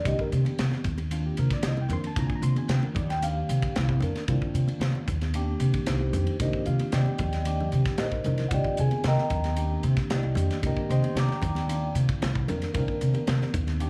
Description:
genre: electric jazz fusion.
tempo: 113 BPM.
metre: 4/4.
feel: straight.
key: C minor.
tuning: A4 = 439 Hz.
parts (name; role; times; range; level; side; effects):
mellow tine electric piano; accompaniment; 0.0-13.9 s; Eb3 to D6; -32 LUFS; equal; phaser.
upright bass; bass; 0.1-13.9 s; Bb1 to C3; -29 LUFS; equal; none.
crisp fusion drum kit; drums; 0.1-13.9 s; hi-hat, kick drum, ride cymbal, snare drum; -35 LUFS; equal; none.
congas; percussion; 0.5-13.8 s; none; -39 LUFS; equal; none.
room: light reverb, studio reverb.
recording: studio ambience.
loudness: -27 LUFS.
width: mono.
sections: 0.0-13.9 A section.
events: none.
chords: 0.0 Cm9.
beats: | 0.06 0.58 1.11 1.64 | 2.17 2.70 3.23 3.76 | 4.29 4.82 5.35 5.88 | 6.41 6.93 7.46 7.99 | 8.52 9.05 9.58 10.11 | 10.64 11.17 11.70 12.23 | 12.75 13.28 13.81.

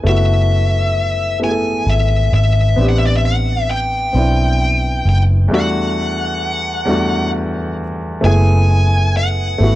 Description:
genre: slow six-eight R&B.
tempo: 44 BPM (dotted quarters).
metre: 6/8.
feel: straight.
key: F# phrygian.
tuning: A4 = 440 Hz.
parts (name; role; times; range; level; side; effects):
warm grand piano; accompaniment; 0.0-9.8 s; E2 to B4; -20 LUFS; equal; none.
vintage muted fingered electric bass; bass; 0.0-9.8 s; F#1 to B1; -14 LUFS; equal; none.
high-gain lead guitar; melody; 0.1-9.8 s; D5 to G#5; -20 LUFS; left 2 dB; distortion, analog delay.
room: light reverb.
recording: dry, gritty hardware recording.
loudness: -13 LUFS.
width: side -15 dB against mid.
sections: 0.0-8.2 A section; 8.2-9.8 B section.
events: break 5.5-8.2.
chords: 0.0 F#m11; 2.8 Am11; 5.5 Em11; 8.2 F#m11.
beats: | 0.05 1.41 | 2.77 4.14 | 5.50 6.87 | 8.23 9.59.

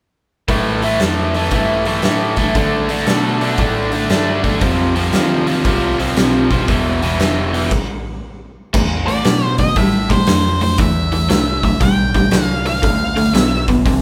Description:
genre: blues rock power trio and southern rock.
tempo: 117 BPM.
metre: 4/4.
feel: swing 66% on 8ths.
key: A minor.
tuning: A4 = 439 Hz.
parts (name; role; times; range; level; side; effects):
overdriven electric guitar; riff; 0.5-14.0 s; E2 to D4; -19 LUFS; equal; none.
growling picked electric bass; bass; 0.5-14.0 s; E1 to D3; -24 LUFS; equal; overdrive.
oversized low-tuned drum kit; drums; 0.5-14.0 s; crash cymbal, hi-hat, kick drum, snare drum; -20 LUFS; equal; none.
octave-fuzz lead guitar; melody; 9.1-13.6 s; C5 to G5; -22 LUFS; equal; distortion.
room: moderate large studio reverb, RT60 0.9 s.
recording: band playing live in one room.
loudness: -16 LUFS.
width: mono.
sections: 0.5-8.7 A section; 8.7-14.0 B section.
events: stop 7.7-8.7.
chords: 0.5 A5; 2.6 D5; 4.6 F5; 6.7 E5; 8.7 Am7; 12.8 Dm7.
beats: | 0.49 1.01 1.53 2.04 | 2.56 3.08 3.59 4.11 | 4.62 5.14 5.66 6.17 | 6.68 7.20 7.71 8.23 | 8.74 9.25 9.77 10.28 | 10.79 11.30 11.81 12.33 | 12.84 13.35 13.86.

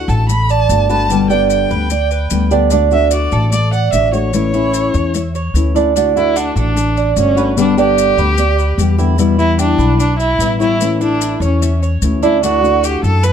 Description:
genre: latin, Cuban son and guajira.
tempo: 148 BPM.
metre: 4/4.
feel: straight.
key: D major.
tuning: A4 = 440 Hz.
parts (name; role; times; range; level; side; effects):
warm violin; melody; 0.0-13.3 s; C#4 to B5; -18 LUFS; equal; plate reverb.
nylon-string guitar; accompaniment; 0.0-13.3 s; B2 to G4; -17 LUFS; left 6 dB; none.
Cuban tres; arpeggios; 0.0-13.3 s; D4 to E5; -18 LUFS; right 13 dB; none.
upright bass; bass; 0.0-13.3 s; G1 to F#2; -16 LUFS; equal; none.
maracas; percussion; 0.1-13.3 s; none; -27 LUFS; left 9 dB; none.
room: light reverb.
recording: dark, warm production.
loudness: -11 LUFS.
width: side -8 dB against mid.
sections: 0.0-6.0 A section; 6.0-13.3 A section.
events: none.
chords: 0.0 D; 1.1 G; 2.7 D; 4.3 A; 6.0 D; 7.6 G; 9.2 Em; 10.8 A; 12.4 D.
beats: 0.29 0.69 | 1.10 1.50 1.91 2.31 | 2.72 3.12 3.52 3.93 | 4.33 4.74 5.14 5.55 | 5.95 6.36 6.76 7.16 | 7.57 7.97 8.38 8.78 | 9.19 9.59 9.99 10.40 | 10.80 11.21 11.61 12.02 | 12.42 12.83 13.23.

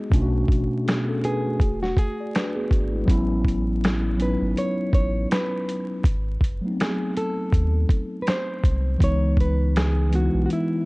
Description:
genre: lo-fi hip hop.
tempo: 81 BPM.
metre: 4/4.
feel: swing 58% on 16ths.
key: C# minor.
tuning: A4 = 441 Hz.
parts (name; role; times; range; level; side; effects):
mellow tine electric piano; accompaniment; 0.0-10.9 s; B2 to D#5; -25 LUFS; equal; medium stereo tremolo, cassette tape, low-pass filter.
soft dub sub bass; bass; 0.1-10.5 s; E1 to D#2; -24 LUFS; equal; none.
lo-fi sampler-style drum kit; drums; 0.1-10.7 s; finger snaps, hi-hat, kick drum, snare drum; -22 LUFS; equal; none.
nylon-string guitar; melody; 1.2-10.9 s; E4 to C#5; -29 LUFS; right 1 dB; low-pass filter.
room: light reverb.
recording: dark, warm production, vinyl crackle, nothing above 10.3 kHz.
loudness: -20 LUFS.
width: side -24 dB against mid.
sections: 0.0-10.9 A section.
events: none.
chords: 0.1 Bm9; 1.6 E; 3.1 A69; 6.0 G#7b9 (rootless); 9.0 C#m7.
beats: | 0.12 0.86 1.60 2.34 | 3.08 3.82 4.56 5.30 | 6.04 6.78 7.52 8.27 | 9.01 9.75 10.49.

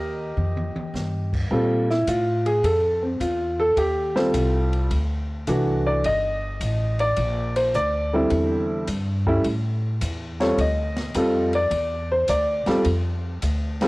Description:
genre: jazz piano trio.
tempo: 106 BPM.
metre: 4/4.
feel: swing 68% on 8ths.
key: unclear.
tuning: A4 = 440 Hz.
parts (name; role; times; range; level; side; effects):
warm grand piano; melody; 0.0-13.9 s; D3 to Eb5; -22 LUFS; equal; cassette tape.
upright bass; bass; 0.0-13.9 s; G1 to Bb2; -25 LUFS; equal; none.
open jazz drum kit; drums; 0.4-13.9 s; crash cymbal, hi-hat, kick drum, ride cymbal, snare drum, toms; -34 LUFS; left 1 dB; cassette tape.
room: light reverb, small room ambience.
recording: home recording on cassette.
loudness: -20 LUFS.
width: side -22 dB against mid.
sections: 0.0-1.5 A section; 1.5-13.9 B section.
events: drum fill 0.4-0.9; grand piano solo 1.5-13.9.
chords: 0.4 Fsus2; 1.5 Bb5; 3.8 Am7b5; 4.9 D7; 6.0 Gm; 8.3 Cadd9/E; 9.4 A5; 10.6 Dm9; 12.9 N.C..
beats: 0.37 0.94 | 1.51 2.07 2.64 3.21 | 3.77 4.34 4.91 5.48 | 6.04 6.61 7.18 7.75 | 8.31 8.88 9.45 10.02 | 10.59 11.15 11.72 12.29 | 12.86 13.42.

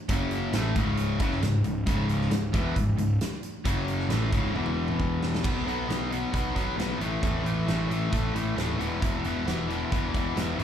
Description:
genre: classic rock.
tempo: 134 BPM.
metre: 4/4.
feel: straight.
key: unclear.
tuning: A4 = 441 Hz.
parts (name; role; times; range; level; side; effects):
cranked stack guitar; riff; 0.1-10.6 s; C#2 to B3; -29 LUFS; left 6 dB; overdrive.
crunchy overdriven guitar; riff; 0.1-10.6 s; C#2 to B3; -33 LUFS; right 12 dB; spring reverb.
fuzz picked electric bass; bass; 0.1-10.6 s; C#1 to E2; -30 LUFS; right 1 dB; overdrive.
big rock drum kit; drums; 0.1-10.6 s; crash cymbal, hi-hat, kick drum, snare drum, toms; -31 LUFS; right 1 dB; none.
room: light reverb.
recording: live gig heard through the venue's PA, club reverb.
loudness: -25 LUFS.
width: side -9 dB against mid.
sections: 0.0-5.4 A section; 5.4-10.6 B section.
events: drum fill 4.5-5.4.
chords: 0.1 F#5; 0.5 C#m; 3.7 F#5; 4.1 C#m; 4.5 E5; 5.4 B5; 7.0 A5; 8.8 E5.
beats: | 0.08 0.52 0.97 1.42 | 1.86 2.31 2.76 3.20 | 3.65 4.10 4.54 4.99 | 5.44 5.89 6.33 6.78 | 7.23 7.67 8.12 8.57 | 9.02 9.46 9.91 10.36.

